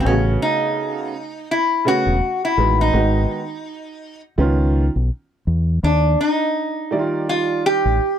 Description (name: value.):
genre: hip hop, jazz-hop.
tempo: 83 BPM.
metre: 4/4.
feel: swing 58% on 16ths.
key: unclear.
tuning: A4 = 440 Hz.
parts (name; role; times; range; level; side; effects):
lap resonator guitar; melody; 0.0-8.2 s; C4 to G4; -19 LUFS; equal; none.
clear upright piano; accompaniment; 0.0-8.0 s; B2 to D5; -22 LUFS; right 3 dB; none.
deep dub fingered electric bass; bass; 0.1-8.0 s; E1 to E2; -18 LUFS; equal; none.
room: little or no reverb.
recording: dry, close 1970s-style studio recording.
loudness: -17 LUFS.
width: side -9 dB against mid.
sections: 0.0-8.2 A section.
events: none.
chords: 0.1 A69; 2.9 Abm7; 4.4 Db9; 5.8 Ebmaj9.